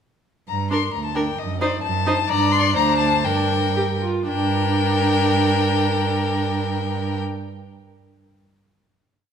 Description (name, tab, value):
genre	quick classical-period movement for string quartet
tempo	111-133 BPM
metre	2/4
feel	rubato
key	G minor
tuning	A4 = 441 Hz
part	warm violin	melody	0.5-7.2 s	D5 to C6	-23 LUFS	left 9 dB	none
part	rich cello	bass	0.5-7.2 s	D2 to G2	-24 LUFS	right 5 dB	none
part	rich violin	second line	0.7-7.2 s	Bb4 to D5	-26 LUFS	left 2 dB	none
part	warm viola	accompaniment	0.7-7.2 s	D4 to G4	-24 LUFS	right 3 dB	none
room	wet recital hall reverb, RT60 1.8 s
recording	minimal, uncompressed stereo recording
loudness	-18 LUFS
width	side -7 dB against mid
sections	0.5-4.3 A section; 4.3-6.4 final chord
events	slowing down 1.8-4.3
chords	0.5 Gm; 1.4 F#dim7; 2.3 Gm; 2.8 D5; 3.3 Gm